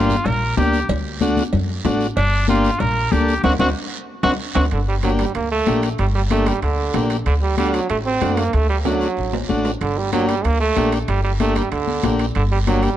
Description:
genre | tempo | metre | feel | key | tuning
latin, cumbia | 188 BPM | 4/4 | straight | G harmonic minor | A4 = 436 Hz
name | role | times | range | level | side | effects
clear trumpet | melody | 0.0-4.6 s | D4 to Bb4 | -22 LUFS | equal | none
combo organ | accompaniment | 0.0-12.9 s | A3 to A4 | -23 LUFS | left 2 dB | none
upright bass | bass | 0.0-12.9 s | G1 to F#2 | -21 LUFS | equal | none
congas | percussion | 0.1-12.8 s | none | -26 LUFS | left 6 dB | none
guiro | percussion | 0.1-13.0 s | none | -35 LUFS | right 7 dB | none
cowbell and timbales | percussion | 0.3-13.0 s | none | -29 LUFS | right 7 dB | none
brilliant trombone | second line | 4.7-13.0 s | D3 to C4 | -22 LUFS | right 4 dB | none
room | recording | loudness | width
light reverb | dark, warm production | -17 LUFS | side -12 dB against mid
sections
0.0-4.7 A section; 4.7-13.0 B section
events
trumpet solo 0.0-4.7; band accent 3.4-4.7; drum fill 4.1-4.7, 8.9-9.8; trombone solo 4.7-13.0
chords
0.0 Gm; 0.9 D; 2.2 Gm; 3.4 D7; 4.7 Gm; 7.3 D; 9.8 Gm

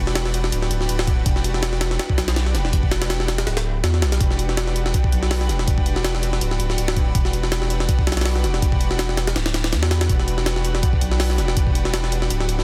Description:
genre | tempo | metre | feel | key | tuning
drum and bass, jungle | 163 BPM | 4/4 | swing 55% on 16ths | E minor | A4 = 443 Hz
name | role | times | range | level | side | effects
lush unison pad | sustained chords | 0.0-12.6 s | D4 to B4 | -32 LUFS | equal | chorus
saturated sub bass | bass | 0.0-12.6 s | D1 to E2 | -24 LUFS | equal | none
jungle sampler-style drum kit | drums | 0.1-12.6 s | hi-hat, kick drum, snare drum | -23 LUFS | equal | none
room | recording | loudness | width
little or no reverb | dense, heavily limited modern master | -21 LUFS | mono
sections
0.0-12.6 A section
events
kick drops out 3.5-4.2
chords
0.0 Em7

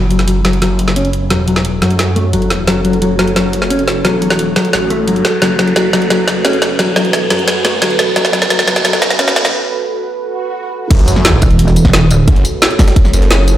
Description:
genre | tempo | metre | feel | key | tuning
dark technical drum and bass | 175 BPM | 4/4 | straight | F# minor | A4 = 439 Hz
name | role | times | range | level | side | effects
deep dark ambient pad | sustained chords | 1.8-13.6 s | F#4 to C#5 | -20 LUFS | right 2 dB | chorus, built-in reverb, sidechain pumping
mellow electric guitar | arpeggios | 0.0-9.3 s | F#3 to C#4 | -16 LUFS | left 2 dB | sidechain pumping, low-pass filter, tape echo
phased detuned saw bass | bass | 0.0-13.6 s | E1 to F#2 | -16 LUFS | equal | phaser, overdrive, sidechain pumping
riser, swell and impact | sound effects | 0.1-12.3 s | none | -23 LUFS | equal | none
drum and bass drum kit | drums | 0.1-13.5 s | crash cymbal, hi-hat, snare drum, tambourine | -15 LUFS | equal | high-pass filter on toms, high-pass filter on snare, high-pass filter on hats, high-pass filter on cymbals, high-pass filter on perc, high-pass filter on room
electronic kick drum | drums | 10.9-13.0 s | none | -9 LUFS | equal | none
jungle sampler-style drum kit | drums | 10.9-13.6 s | hi-hat, snare drum | -24 LUFS | right 1 dB | none
pulsing pluck wobble bass | bass | 11.4-12.3 s | E1 | -9 LUFS | right 1 dB | chorus
room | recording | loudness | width
moderate plate reverb, RT60 1.5 s | played on a big sound system in a bare room, large studio reverb, high-pass filter | -10 LUFS | side -12 dB against mid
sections
0.0-10.9 A section; 10.9-13.6 B section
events
build-up 0.0-10.9; drum fill 0.0-9.5; filter sweep on clean electric guitar 0.0-10.9; filter sweep 0.0-10.9; riser 0.1-9.5; break 9.5-10.9; swell 10.3-10.9; drop 10.9-13.6; impact 10.9-12.3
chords
0.0 F#m

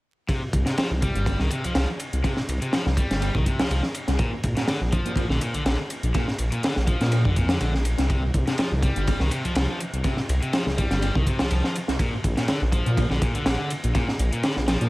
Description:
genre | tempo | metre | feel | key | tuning
breakbeat, breaks | 123 BPM | 4/4 | swing 54% on 16ths | C minor | A4 = 441 Hz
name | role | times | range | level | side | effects
cranked stack guitar | riff | 0.3-14.9 s | Bb2 to G3 | -29 LUFS | left 1 dB | overdrive, tape echo
crunchy breakbeat drum kit | drums | 0.3-14.8 s | kick drum, ride cymbal, snare drum | -25 LUFS | equal | tape echo
electronic hi-hat | drums | 0.3-14.9 s | none | -39 LUFS | left 1 dB | none
detuned saw bass | bass | 0.5-14.9 s | G1 to Bb2 | -24 LUFS | equal | none
room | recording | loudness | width
light reverb, small room ambience | echo-heavy mix, vinyl crackle | -21 LUFS | side -20 dB against mid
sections
0.3-14.9 A section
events
none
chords
0.3 C5; 4.2 Bb; 8.1 C5; 12.0 Bb

